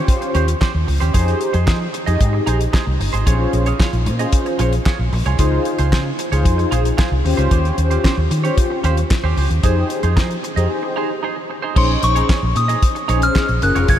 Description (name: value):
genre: early-eighties boogie funk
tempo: 113 BPM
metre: 4/4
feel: straight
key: Bb dorian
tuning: A4 = 440 Hz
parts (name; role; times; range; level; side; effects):
- mellow synth brass; accompaniment; 0.0-14.0 s; Db4 to Eb5; -22 LUFS; left 2 dB; chorus
- semi-hollow electric guitar; riff; 0.0-14.0 s; Db4 to Eb5; -25 LUFS; right 7 dB; wide subtle chorus
- damped 70s drum kit; drums; 0.1-14.0 s; crash cymbal, handclaps, hi-hat, kick drum, snare drum; -20 LUFS; equal; none
- vintage muted fingered electric bass; bass; 0.3-14.0 s; F1 to F3; -18 LUFS; equal; none
- delicate synth tine bell; melody; 11.8-14.0 s; C6 to Ab6; -19 LUFS; left 1 dB; chorus, tremolo
room: moderate huge ambient reverb, RT60 7.9 s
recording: dreamy mix soaked in reverb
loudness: -15 LUFS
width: side -11 dB against mid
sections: 0.0-11.8 A section; 11.8-14.0 B section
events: break 10.7-11.8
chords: 0.0 Eb13; 1.1 Fm7; 3.3 Bbm7; 7.2 Eb13; 9.6 Fm7; 11.8 Bbm11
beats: 0.08 0.61 | 1.14 1.68 2.21 2.74 | 3.27 3.80 4.33 4.86 | 5.39 5.92 6.45 6.98 | 7.51 8.05 8.58 9.11 | 9.64 10.17 10.70 11.23 | 11.76 12.29 12.82 13.36 | 13.89